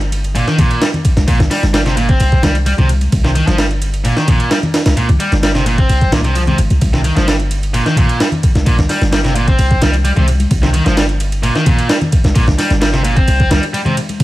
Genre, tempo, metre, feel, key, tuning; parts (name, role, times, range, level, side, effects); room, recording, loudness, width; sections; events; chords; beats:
breakbeat, breaks; 130 BPM; 4/4; straight; C minor; A4 = 442 Hz
warm 808-style bass; bass; 0.0-14.2 s; G1 to C2; -15 LUFS; equal; tube saturation
electronic hi-hat; drums; 0.0-14.2 s; -31 LUFS; right 2 dB
breakbeat sampler-style drum kit; drums; 0.1-14.2 s; hi-hat, kick drum, ride cymbal, snare drum; -15 LUFS; equal
overdriven electric guitar; riff; 0.4-13.9 s; Bb2 to C4; -17 LUFS; equal; vintage 12-bit sampler grit, digital delay
congas; percussion; 0.6-14.2 s; -22 LUFS; left 1 dB
little or no reverb; vinyl crackle; -11 LUFS; side -16 dB against mid
0.0-14.2 A section
0.0 C5
0.35 0.82 | 1.28 1.74 2.20 2.66 | 3.12 3.59 4.05 4.51 | 4.97 5.43 5.89 6.36 | 6.82 7.28 7.74 8.20 | 8.66 9.12 9.59 10.05 | 10.51 10.97 11.43 11.89 | 12.36 12.82 13.28 13.74 | 14.20